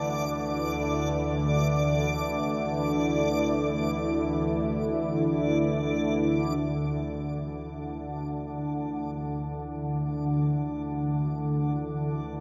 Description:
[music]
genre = dark ambient drone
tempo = free time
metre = none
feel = none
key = unclear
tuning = A4 = 440 Hz
[part]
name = sweeping resonant pad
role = sustained chords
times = 0.0-12.4 s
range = D3 to E4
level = -33 LUFS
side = equal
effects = chorus
[part]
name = warm concert grand piano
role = arpeggios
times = 0.0-12.4 s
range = none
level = barely audible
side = none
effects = none
[part]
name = organ-like drone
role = drone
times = 0.0-12.4 s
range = D2 to D3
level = -31 LUFS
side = equal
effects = ensemble chorus, built-in reverb
[part]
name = backwards swelling texture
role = texture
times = 0.0-12.4 s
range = D5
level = -36 LUFS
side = equal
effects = built-in reverb
[sound]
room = wet huge ambient reverb, RT60 8.5 s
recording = none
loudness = -28 LUFS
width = mono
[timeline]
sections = 0.0-6.6 A section; 6.6-12.4 B section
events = none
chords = 0.0 Dsus2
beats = free time

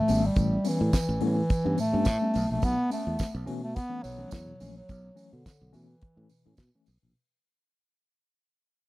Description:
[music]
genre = disco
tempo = 106 BPM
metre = 4/4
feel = straight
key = unclear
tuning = A4 = 440 Hz
[part]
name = dark bass clarinet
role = melody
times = 0.0-6.6 s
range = D3 to B3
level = -28 LUFS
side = equal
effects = tape echo
[part]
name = mellow tine electric piano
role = accompaniment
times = 0.0-7.1 s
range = A2 to C#4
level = -33 LUFS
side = left 4 dB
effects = medium stereo tremolo
[part]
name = fingered electric bass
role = bass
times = 0.1-7.1 s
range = G#1 to B2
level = -30 LUFS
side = equal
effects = none
[part]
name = damped 70s drum kit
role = drums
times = 0.1-7.0 s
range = hi-hat, kick drum, snare drum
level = -27 LUFS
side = equal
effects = none
[part]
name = tambourine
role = percussion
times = 0.1-7.0 s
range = none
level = -45 LUFS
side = right 9 dB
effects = none
[sound]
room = small room reverb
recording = dry, close 1970s-style studio recording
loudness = -25 LUFS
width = side -18 dB against mid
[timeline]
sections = 0.0-7.2 A section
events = fade-out 0.0-7.2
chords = 0.0 A7; 2.3 B7sus4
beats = | 0.36 0.93 1.50 2.06 | 2.63 3.19 3.76 4.32 | 4.89 5.45 6.02 6.58

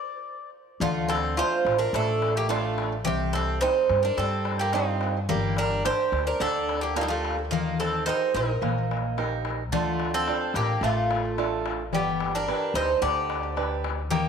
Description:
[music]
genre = greek folk, Greek bouzouki band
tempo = 108 BPM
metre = 4/4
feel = straight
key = D phrygian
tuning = A4 = 440 Hz
[part]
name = Greek bouzouki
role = melody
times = 0.0-14.3 s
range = Eb4 to D5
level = -27 LUFS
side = right 2 dB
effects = none
[part]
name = Greek bouzouki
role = second line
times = 0.8-14.3 s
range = G3 to G4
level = -32 LUFS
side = left 1 dB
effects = tape echo
[part]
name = picked swing-style acoustic guitar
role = accompaniment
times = 0.8-14.3 s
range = C3 to B4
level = -31 LUFS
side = right 11 dB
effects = none
[part]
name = upright bass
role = bass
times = 0.8-14.3 s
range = G1 to G2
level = -30 LUFS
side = left 1 dB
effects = none
[part]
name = darbuka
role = percussion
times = 0.8-14.3 s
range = none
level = -32 LUFS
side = left 12 dB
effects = none
[sound]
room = moderate plate reverb, RT60 2.9 s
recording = 1960s-style stereo with parts hard left and right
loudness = -23 LUFS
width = side -6 dB against mid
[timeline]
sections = 0.8-14.3 A section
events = speeding up 0.0-14.3; stop 0.0-0.8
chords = 0.0 N.C.; 0.8 Dm; 3.1 Cm; 5.3 Gm; 7.5 Eb; 9.7 Dm; 11.9 G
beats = 0.25 | 0.81 1.37 1.94 2.50 | 3.06 3.62 4.18 4.74 | 5.29 5.85 6.41 6.96 | 7.52 8.07 8.62 9.18 | 9.73 10.28 10.83 11.38 | 11.93 12.47 13.02 13.57 | 14.11

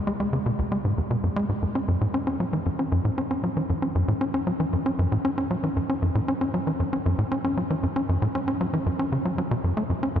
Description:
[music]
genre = ambient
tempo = 116 BPM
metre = 4/4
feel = straight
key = F# minor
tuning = A4 = 440 Hz
[part]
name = tight sequencer bass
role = solo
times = 0.1-10.2 s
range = C#2 to C#4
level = -23 LUFS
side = equal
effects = tape echo
[sound]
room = wet huge ambient reverb, RT60 7.2 s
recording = in a vast, echoing space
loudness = -23 LUFS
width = side -9 dB against mid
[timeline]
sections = 0.0-1.6 A section; 1.6-10.2 B section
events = none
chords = none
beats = 0.07 0.59 1.11 | 1.62 2.14 2.66 3.18 | 3.69 4.21 4.73 5.25 | 5.76 6.28 6.80 7.31 | 7.83 8.35 8.87 9.38 | 9.90

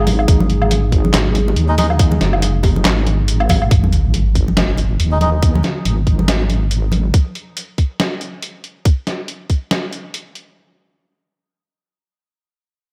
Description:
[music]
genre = deep dubstep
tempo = 140 BPM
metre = 4/4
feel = swing 56% on 16ths, half-time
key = unclear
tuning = A4 = 440 Hz
[part]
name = dark analog pad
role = sustained chords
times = 0.0-3.7 s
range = G#3 to G#4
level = -27 LUFS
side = equal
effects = chorus
[part]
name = wobble bass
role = bass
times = 0.0-7.1 s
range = F#1 to D#2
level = -18 LUFS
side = equal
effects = chorus
[part]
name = trip hop sampler-style drum kit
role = drums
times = 0.1-10.5 s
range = handclaps, hi-hat, snare drum, woodblock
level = -22 LUFS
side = equal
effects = overdrive
[part]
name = bongos and congas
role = percussion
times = 0.1-7.0 s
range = none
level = -25 LUFS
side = equal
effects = dub echo
[part]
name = electronic kick drum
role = drums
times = 0.3-9.6 s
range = none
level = -15 LUFS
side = equal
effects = none
[part]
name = melodica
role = stabs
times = 1.7-1.9, 5.1-5.3 s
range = G#3 to D#5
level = -27 LUFS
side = equal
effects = dub echo
[part]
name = sub drop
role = sound effects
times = 3.7-5.4 s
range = none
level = -23 LUFS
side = equal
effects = none
[sound]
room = light reverb, digital ambience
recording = none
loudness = -16 LUFS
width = mono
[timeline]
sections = 0.0-3.7 A section; 3.7-10.6 B section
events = drop 0.0-3.7; impact 3.7-5.4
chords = 0.0 G#5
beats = | 0.28 0.71 1.14 1.57 | 2.00 2.42 2.85 3.28 | 3.71 4.14 4.57 5.00 | 5.42 5.85 6.28 6.71 | 7.14 7.57 8.00 8.43 | 8.85 9.28 9.71 10.14

